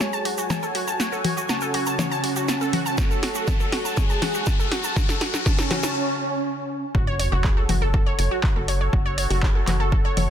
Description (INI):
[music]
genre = melodic techno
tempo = 121 BPM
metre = 4/4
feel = straight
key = F# minor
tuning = A4 = 440 Hz
[part]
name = wide unison lead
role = melody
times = 0.0-6.8 s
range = C#4 to A4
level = -28 LUFS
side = right 2 dB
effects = sidechain pumping, ping-pong delay
[part]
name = sweeping resonant pad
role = sustained chords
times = 0.0-10.3 s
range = F#4 to G#5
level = -33 LUFS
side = left 1 dB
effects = chorus, vintage 12-bit sampler grit, sidechain pumping
[part]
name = wide unison pluck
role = arpeggios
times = 0.0-10.2 s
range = F#4 to A5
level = -28 LUFS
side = equal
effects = sidechain pumping, digital delay
[part]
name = punchy analog drum machine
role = drums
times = 0.0-10.3 s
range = congas, handclaps, hi-hat, snare drum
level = -27 LUFS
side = left 2 dB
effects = none
[part]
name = egg shaker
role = percussion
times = 0.0-5.9 s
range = none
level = -35 LUFS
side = right 7 dB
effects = none
[part]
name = riser and sub drop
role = sound effects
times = 0.2-8.9 s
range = none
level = -33 LUFS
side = left 2 dB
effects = none
[part]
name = electronic kick drum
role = drums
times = 3.0-10.0 s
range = none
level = -22 LUFS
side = equal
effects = none
[part]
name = tight sequencer bass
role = bass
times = 6.9-10.3 s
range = F#1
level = -24 LUFS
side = equal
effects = sidechain pumping
[sound]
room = light reverb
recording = dense, heavily limited modern master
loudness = -20 LUFS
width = side -9 dB against mid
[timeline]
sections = 0.0-6.9 A section; 6.9-10.3 B section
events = build-up 0.0-6.9; drum fill 0.0-6.0; filter sweep on analog synth lead 0.0-6.9; riser 0.2-6.0; break 6.0-6.9; drop 6.9-10.3; impact 6.9-8.9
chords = 0.0 F#m